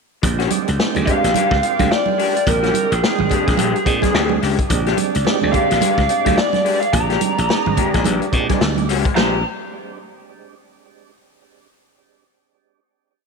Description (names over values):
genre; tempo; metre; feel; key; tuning
funk; 108 BPM; 4/4; swing 60% on 16ths; Bb mixolydian; A4 = 435 Hz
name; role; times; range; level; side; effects
clear horn section; second line; 0.2-9.4 s; Ab3 to G5; -27 LUFS; right 7 dB; none
electric guitar through a small old amp; accompaniment; 0.2-9.4 s; Ab3 to Ab4; -23 LUFS; left 13 dB; spring reverb
percussive tonewheel organ; stabs; 0.2-9.4 s; Ab3 to Ab4; -26 LUFS; right 12 dB; overdrive, chorus vibrato, slow rotary speaker, tape echo
slap bass; bass; 0.2-9.4 s; Ab1 to Bb2; -20 LUFS; left 1 dB; none
vintage drum kit; drums; 0.2-9.3 s; hi-hat, kick drum, snare drum; -21 LUFS; left 2 dB; none
congas; percussion; 0.2-9.4 s; none; -25 LUFS; right 13 dB; none
lead guitar through a small cranked amp; melody; 1.1-9.4 s; Ab4 to Bb5; -20 LUFS; equal; overdrive
room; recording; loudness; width
moderate echo chamber reverb, RT60 2.2 s; 1960s-style stereo with parts hard left and right; -15 LUFS; side -4 dB against mid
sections
0.2-9.2 A section; 9.2-11.4 final chord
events
none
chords
0.2 Bb13